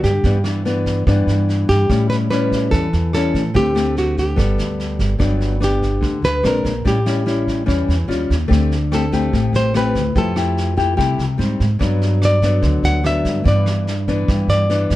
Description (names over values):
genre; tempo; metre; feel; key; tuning
bossa nova; 145 BPM; 4/4; straight; G major; A4 = 443 Hz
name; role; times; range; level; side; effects
nylon-string guitar; melody; 0.0-15.0 s; F#4 to F#5; -20 LUFS; equal; none
nylon-string guitar; accompaniment; 0.0-15.0 s; G2 to A4; -20 LUFS; left 3 dB; none
upright bass; bass; 0.0-15.0 s; G1 to A2; -19 LUFS; right 1 dB; none
vintage brush drum kit; drums; 0.0-15.0 s; kick drum, rim click, snare drum; -24 LUFS; right 1 dB; none
room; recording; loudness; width
light reverb; dark, warm production; -15 LUFS; side -15 dB against mid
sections
0.0-5.2 A section; 5.2-15.0 B section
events
nylon-string guitar solo 5.2-15.0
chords
0.2 G6; 1.9 A7; 3.5 D7sus4; 4.4 Gadd9; 5.2 Gmaj7; 6.4 Bb9; 6.8 A7; 8.1 Eb9; 8.5 D7sus4; 10.2 Fmaj9; 11.4 Abmaj7; 11.8 Gmaj7; 13.5 G6